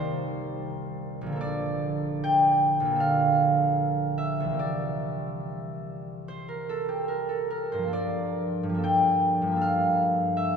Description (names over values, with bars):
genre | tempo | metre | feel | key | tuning
classical, solo harp piece | 64-82 BPM | 4/4 | rubato | unclear | A4 = 444 Hz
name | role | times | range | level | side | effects
concert harp | solo | 0.0-10.6 s | Bb1 to G5 | -24 LUFS | right 1 dB | none
room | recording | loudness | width
wet cathedral reverb, RT60 4.4 s | minimal, uncompressed stereo recording | -24 LUFS | side -6 dB against mid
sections
0.0-10.6 A section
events
none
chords
0.0 Cm7; 1.4 Bbmaj9; 4.6 C9; 7.9 Gm9